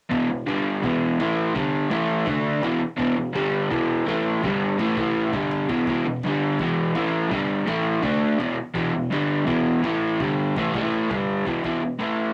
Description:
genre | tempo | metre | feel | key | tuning
garage rock duo or trio | 166 BPM | 4/4 | straight | unclear | A4 = 443 Hz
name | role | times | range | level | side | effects
crunchy overdriven guitar | riff | 0.1-12.3 s | E2 to D4 | -24 LUFS | equal | none
cajon | drums | 0.1-12.1 s | none | -41 LUFS | equal | none
room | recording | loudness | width
moderate small room reverb, RT60 0.5 s | home recording on cassette | -23 LUFS | mono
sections
0.1-11.6 A section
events
kick and snare drop out 10.2-11.6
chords
0.1 E5; 0.5 G5; 0.8 E5; 1.2 A5; 1.5 G5; 1.9 A5; 2.3 D5; 2.6 E5; 3.3 G5; 3.7 E5; 4.1 A5; 4.4 G5; 4.8 A5; 5.3 G5; 5.7 E5; 6.2 G5; 6.6 E5; 7.0 A5; 7.3 G5; 7.7 A5; 8.0 D5; 8.4 E5; 9.1 G5; 9.5 E5; 9.8 A5; 10.2 G5; 10.6 A5; 11.1 G5; 11.5 E5

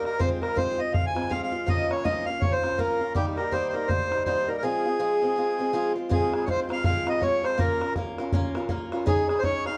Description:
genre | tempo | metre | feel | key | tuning
celtic folk, Celtic hornpipe | 162 BPM | 4/4 | swing 61% on 8ths | F minor | A4 = 440 Hz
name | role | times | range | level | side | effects
accordion | melody | 0.0-9.8 s | G4 to Ab5 | -29 LUFS | equal | none
musette accordion | second line | 0.0-9.8 s | G4 to Ab5 | -35 LUFS | equal | none
picked swing-style acoustic guitar | accompaniment | 0.0-9.8 s | Eb3 to Db5 | -33 LUFS | equal | none
bodhran | percussion | 0.1-9.7 s | none | -31 LUFS | equal | none
room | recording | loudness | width
moderate small room reverb, RT60 0.5 s | dark, warm production | -26 LUFS | mono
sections
0.0-6.1 A section; 6.1-9.8 B section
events
none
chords
0.2 Fm; 1.7 Bbm/F; 3.2 Eb; 4.6 Fm; 7.6 Bbm; 9.1 Dbsus2

